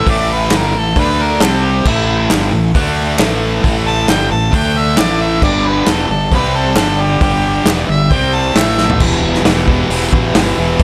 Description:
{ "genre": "garage rock duo or trio", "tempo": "134 BPM", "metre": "4/4", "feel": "straight", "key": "E minor", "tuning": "A4 = 444 Hz", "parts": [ { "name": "clear harmonica", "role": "melody", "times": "0.0-9.0 s", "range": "E4 to A5", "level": "-20 LUFS", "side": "equal", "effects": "overdrive" }, { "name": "overdriven combo organ", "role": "sustained chords", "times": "0.0-10.8 s", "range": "C4 to E5", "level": "-26 LUFS", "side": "equal", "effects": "none" }, { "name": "thick fuzz guitar", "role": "riff", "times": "0.0-10.8 s", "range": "E2 to D4", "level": "-18 LUFS", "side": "equal", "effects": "distortion" }, { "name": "fuzz fingered electric bass", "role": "bass", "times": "0.0-10.8 s", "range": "E1 to D2", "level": "-21 LUFS", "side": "equal", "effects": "overdrive" }, { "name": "raw garage drum kit", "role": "drums", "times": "0.1-10.8 s", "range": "crash cymbal, hi-hat, kick drum, snare drum, toms", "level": "-19 LUFS", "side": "equal", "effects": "none" }, { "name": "group handclap", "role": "percussion", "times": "0.5-8.7 s", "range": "none", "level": "-24 LUFS", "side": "equal", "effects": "none" } ], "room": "light reverb", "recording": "none", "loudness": "-13 LUFS", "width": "mono", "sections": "0.0-9.0 A section; 9.0-10.8 B section", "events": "harmonica solo 0.0-9.0; drum fill 8.8", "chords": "0.0 A5; 1.0 D5; 1.4 C5; 1.9 A5; 2.8 D5; 3.2 A5; 4.5 D5; 5.0 A5; 5.4 G5; 6.3 C5; 6.8 G5; 8.1 C5; 8.6 A5; 9.0 Em", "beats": "| 0.07 0.52 0.96 1.41 | 1.86 2.30 2.75 3.20 | 3.64 4.09 4.54 4.98 | 5.43 5.88 6.33 6.77 | 7.22 7.67 8.12 8.56 | 9.01 9.46 9.90 10.35 | 10.80" }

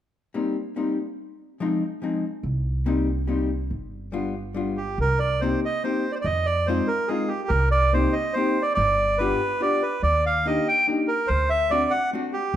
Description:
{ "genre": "musette waltz", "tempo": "143 BPM", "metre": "3/4", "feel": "straight", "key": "C minor", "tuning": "A4 = 440 Hz", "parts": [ { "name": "hollow-body jazz guitar", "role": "accompaniment", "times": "0.3-12.3 s", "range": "F3 to G4", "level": "-26 LUFS", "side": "left 3 dB", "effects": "none" }, { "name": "upright bass", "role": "bass", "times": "2.4-12.6 s", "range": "G1 to F2", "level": "-26 LUFS", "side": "equal", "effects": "none" }, { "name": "bandoneon", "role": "melody", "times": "4.8-12.6 s", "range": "G4 to G5", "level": "-22 LUFS", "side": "right 2 dB", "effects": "slapback echo" } ], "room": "moderate recital hall reverb, RT60 1.4 s", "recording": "none", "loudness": "-21 LUFS", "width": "side -11 dB against mid", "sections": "0.0-5.0 A section; 5.0-12.6 B section", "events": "none", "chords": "0.0 Cm7; 1.2 Fm7; 2.4 Cm7; 3.7 G7; 5.0 Cm7; 6.2 Fm7; 7.5 Cm7; 8.8 G7; 10.0 Ebmaj7; 11.3 D7", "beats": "0.34 0.76 | 1.18 1.60 2.02 | 2.44 2.86 3.28 | 3.71 4.13 4.55 | 4.98 5.40 5.83 | 6.25 6.67 7.09 | 7.51 7.92 8.34 | 8.76 9.18 9.60 | 10.03 10.45 10.87 | 11.29 11.71 12.12 | 12.54" }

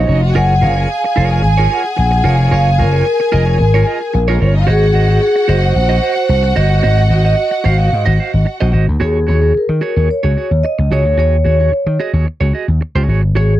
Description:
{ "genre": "disco", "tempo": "111 BPM", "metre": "4/4", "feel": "straight", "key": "Eb dorian", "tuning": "A4 = 442 Hz", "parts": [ { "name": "vibraphone with soft mallets", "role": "melody", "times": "0.0-13.6 s", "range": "Ab4 to Ab5", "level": "-17 LUFS", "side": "equal", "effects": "none" }, { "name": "warm studio violin section", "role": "second line", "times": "0.0-8.7 s", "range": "Ab3 to Ab5", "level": "-20 LUFS", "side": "left 2 dB", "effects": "none" }, { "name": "clean electric guitar", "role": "accompaniment", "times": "0.0-13.5 s", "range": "Eb4 to F5", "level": "-21 LUFS", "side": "right 6 dB", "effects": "tremolo" }, { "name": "vintage slap bass", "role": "bass", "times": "0.0-13.6 s", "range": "F1 to Eb3", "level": "-12 LUFS", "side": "equal", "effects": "none" } ], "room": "little or no reverb", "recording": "dry, close 1970s-style studio recording", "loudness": "-11 LUFS", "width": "side -14 dB against mid", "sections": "0.0-9.0 A section; 9.0-13.6 B section", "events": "none", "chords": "0.0 Ab7sus4; 4.7 Ab7; 9.0 Ebm7; 13.1 Ab7sus4", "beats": "| 0.35 0.89 1.44 1.98 | 2.52 3.06 3.60 4.14 | 4.68 5.22 5.76 6.30 | 6.84 7.38 7.92 8.47 | 9.01 9.55 10.09 10.64 | 11.18 11.72 12.27 12.81 | 13.35" }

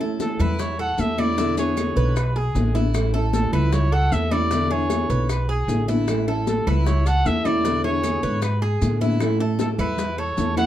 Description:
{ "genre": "latin, Cuban son and guajira", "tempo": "153 BPM", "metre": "4/4", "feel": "straight", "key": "A major", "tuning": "A4 = 440 Hz", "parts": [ { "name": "nylon-string guitar", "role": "accompaniment", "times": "0.0-10.7 s", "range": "B2 to E4", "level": "-25 LUFS", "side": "left 1 dB", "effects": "none" }, { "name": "Cuban tres", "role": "arpeggios", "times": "0.0-10.7 s", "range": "E4 to B4", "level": "-30 LUFS", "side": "right 4 dB", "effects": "none" }, { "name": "bongos", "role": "percussion", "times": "0.0-10.6 s", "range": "none", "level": "-34 LUFS", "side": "left 6 dB", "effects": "none" }, { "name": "congas", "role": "percussion", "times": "0.0-10.7 s", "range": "none", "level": "-29 LUFS", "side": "left 2 dB", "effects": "none" }, { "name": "clear trumpet", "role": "melody", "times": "0.2-10.7 s", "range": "G#4 to F#5", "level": "-26 LUFS", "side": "equal", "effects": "none" }, { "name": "maracas", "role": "percussion", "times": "0.2-10.7 s", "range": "none", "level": "-40 LUFS", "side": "left 4 dB", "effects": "none" }, { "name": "upright bass", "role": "bass", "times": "0.4-10.7 s", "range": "A1 to A2", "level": "-23 LUFS", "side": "equal", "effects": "none" }, { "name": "claves", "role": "percussion", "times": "0.4-10.7 s", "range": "none", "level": "-40 LUFS", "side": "right 4 dB", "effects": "none" } ], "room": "moderate small room reverb, RT60 0.6 s", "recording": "dark, warm production", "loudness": "-19 LUFS", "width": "side -12 dB against mid", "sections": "0.0-10.7 A section", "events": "none", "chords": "0.0 A; 1.4 E7; 2.9 A; 4.5 E7; 6.1 A; 7.6 E7; 9.2 A", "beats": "0.20 0.59 0.99 | 1.38 1.77 2.16 2.56 | 2.95 3.34 3.73 4.12 | 4.51 4.91 5.30 5.69 | 6.08 6.47 6.86 7.25 | 7.64 8.04 8.43 8.82 | 9.21 9.60 9.99 10.38" }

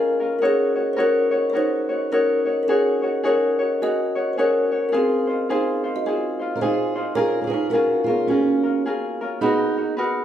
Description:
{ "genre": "Hawaiian", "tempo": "107 BPM", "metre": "4/4", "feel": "swing 61% on 8ths", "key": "Db major, F# major from 7.2 s", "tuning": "A4 = 440 Hz", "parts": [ { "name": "kalimba", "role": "melody", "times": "0.0-9.9 s", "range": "A#3 to Eb5", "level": "-21 LUFS", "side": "left 1 dB", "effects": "none" }, { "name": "ukulele", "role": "accompaniment", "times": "0.0-10.2 s", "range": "C#4 to Db5", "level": "-24 LUFS", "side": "left 1 dB", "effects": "none" }, { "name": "fingerpicked steel-string acoustic guitar", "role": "second line", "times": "6.6-9.9 s", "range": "C#4 to Bb4", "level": "-23 LUFS", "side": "right 4 dB", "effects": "none" } ], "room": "moderate large studio reverb, RT60 1.1 s", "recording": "band playing live in one room, lossy compression artefacts", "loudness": "-19 LUFS", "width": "side -10 dB against mid", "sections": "0.0-7.2 A section; 7.2-10.2 B section", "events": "none", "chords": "0.4 Ebm7; 2.7 Ab7sus4; 4.9 Dbmaj9; 7.2 F#maj9; 9.4 G#m9", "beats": "| 0.42 0.98 1.54 2.11 | 2.67 3.23 3.80 4.36 | 4.92 5.48 6.05 6.61 | 7.17 7.73 8.29 8.86 | 9.42 9.98" }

